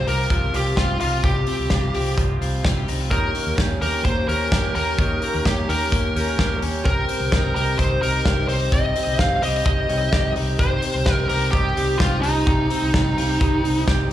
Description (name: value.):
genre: jangly indie pop.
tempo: 128 BPM.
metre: 4/4.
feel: straight.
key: unclear.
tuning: A4 = 440 Hz.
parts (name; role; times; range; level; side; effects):
smooth overdriven lead guitar; melody; 0.0-13.8 s; Eb4 to F5; -23 LUFS; equal; slapback echo, analog delay.
electric guitar through a small old amp; accompaniment; 0.0-14.1 s; C3 to G4; -28 LUFS; right 4 dB; slapback echo.
twelve-string electric guitar; arpeggios; 0.0-14.1 s; C3 to G4; -30 LUFS; left 5 dB; slapback echo, analog delay.
vintage muted fingered electric bass; bass; 0.0-14.1 s; C2 to Eb2; -24 LUFS; equal; none.
loose indie drum kit; drums; 0.1-14.0 s; hi-hat, kick drum, snare drum; -23 LUFS; equal; none.
room: light reverb.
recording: live gig heard through the venue's PA, club reverb.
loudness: -18 LUFS.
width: side -12 dB against mid.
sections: 0.0-14.1 A section.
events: none.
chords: 0.0 Csus4; 3.1 Eb7; 6.8 Cm.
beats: 0.31 0.77 | 1.24 1.71 2.17 2.64 | 3.11 3.58 4.04 4.51 | 4.98 5.45 5.91 6.38 | 6.85 7.32 7.79 8.25 | 8.72 9.19 9.66 10.13 | 10.60 11.06 11.53 12.00 | 12.47 12.94 13.41 13.88.